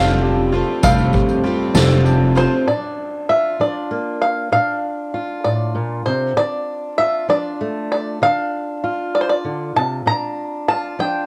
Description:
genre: indie folk with a building arrangement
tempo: 65 BPM (dotted quarters)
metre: 6/8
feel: straight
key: unclear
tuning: A4 = 442 Hz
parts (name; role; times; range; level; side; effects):
- bluegrass banjo; melody; 0.0-11.3 s; C5 to Bb5; -22 LUFS; equal; cassette tape
- picked twelve-string acoustic guitar; accompaniment; 0.0-2.7 s; F2 to F4; -21 LUFS; equal; cassette tape
- felt-muted upright piano; arpeggios; 0.0-2.7 s; F4 to A4; -28 LUFS; equal; cassette tape
- upright bass; bass; 0.0-2.4 s; F1; -20 LUFS; equal; none
- soft-mallet drum kit; drums; 0.2-2.5 s; kick drum, ride cymbal, snare drum; -24 LUFS; equal; cassette tape
- tambourine; percussion; 0.8-2.4 s; none; -35 LUFS; equal; none
- fingerpicked steel-string acoustic guitar; accompaniment; 2.7-11.3 s; A2 to F4; -26 LUFS; equal; cassette tape
room: light reverb, small room ambience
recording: home recording on cassette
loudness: -19 LUFS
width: mono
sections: 0.0-2.7 A section; 2.7-11.3 B section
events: none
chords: 0.0 Fadd9; 2.7 Bb; 6.4 Dm; 10.1 Bb

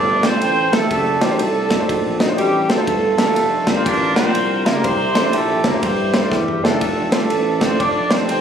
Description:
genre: uptempo gospel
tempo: 122 BPM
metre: 4/4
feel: swing 63% on 8ths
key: F major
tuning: A4 = 440 Hz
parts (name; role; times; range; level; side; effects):
- mellow horn section; melody; 0.0-8.4 s; G3 to D5; -18 LUFS; right 1 dB; slapback echo
- mellow tuba; bass; 0.0-8.4 s; E1 to G2; -24 LUFS; right 1 dB; none
- clear baby grand piano; accompaniment; 0.2-8.3 s; G2 to E5; -22 LUFS; left 1 dB; none
- natural country drum kit; drums; 0.2-8.4 s; kick drum, ride cymbal, snare drum, toms; -22 LUFS; right 1 dB; none
room: light reverb, studio reverb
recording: recorded on a phone in the room, club reverb, compression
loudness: -15 LUFS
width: side -8 dB against mid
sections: 0.0-8.4 A section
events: drum fill 6.3-6.8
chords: 0.0 Fmaj7; 0.9 D7b9/F#; 2.9 Gm7; 4.8 C13; 6.8 F6; 7.8 F7

